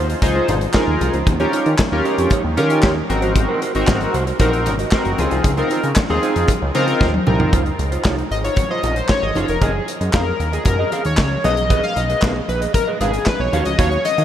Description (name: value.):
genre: early-eighties boogie funk.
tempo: 115 BPM.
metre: 4/4.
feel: straight.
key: Db major.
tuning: A4 = 440 Hz.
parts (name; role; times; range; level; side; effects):
mellow electric guitar; riff; 0.0-14.2 s; Eb4 to F5; -24 LUFS; right 5 dB; analog chorus.
fat analog bass; bass; 0.0-14.2 s; F1 to Eb3; -21 LUFS; equal; none.
modern studio drum kit; drums; 0.1-14.2 s; handclaps, hi-hat, kick drum, snare drum, toms; -20 LUFS; equal; none.
chorused polysynth; accompaniment; 0.2-14.2 s; C4 to F5; -20 LUFS; left 2 dB; none.
congas; percussion; 0.2-14.2 s; none; -28 LUFS; left 4 dB; none.
room: moderate huge ambient reverb, RT60 7.9 s.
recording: dreamy mix soaked in reverb.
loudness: -15 LUFS.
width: side -10 dB against mid.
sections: 0.0-7.5 A section; 7.5-14.2 B section.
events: drum fill 7.0-7.5; analog polysynth solo 7.5-14.2.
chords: 0.0 Dbmaj9; 1.3 Eb7; 3.1 Ab9; 5.2 Dbmaj9; 9.6 Gb69; 11.4 Cb6; 13.5 Ebm9.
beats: 0.23 0.75 | 1.27 1.79 2.31 2.83 | 3.35 3.88 4.40 4.92 | 5.44 5.96 6.49 7.01 | 7.53 8.05 8.57 9.09 | 9.62 10.14 10.66 11.18 | 11.70 12.22 12.75 13.27 | 13.79.